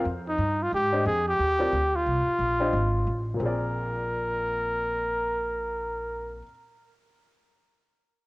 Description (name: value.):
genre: modal jazz.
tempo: 178 BPM.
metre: 4/4.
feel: swing 62% on 8ths.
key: Bb mixolydian.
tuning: A4 = 440 Hz.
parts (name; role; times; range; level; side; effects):
warm baby grand piano; accompaniment; 0.0-6.5 s; Bb2 to Eb5; -33 LUFS; left 2 dB; none.
upright bass; bass; 0.0-6.4 s; Ab1 to Ab2; -31 LUFS; equal; tube saturation.
breathy trumpet; melody; 0.3-6.4 s; Eb4 to Bb4; -26 LUFS; equal; cassette tape.
room: moderate spring reverb, RT60 3.0 s.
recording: home recording on cassette.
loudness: -24 LUFS.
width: side -21 dB against mid.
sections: 0.0-3.4 A section; 3.4-6.1 B section.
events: none.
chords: 0.0 Abadd9; 3.4 Bb7.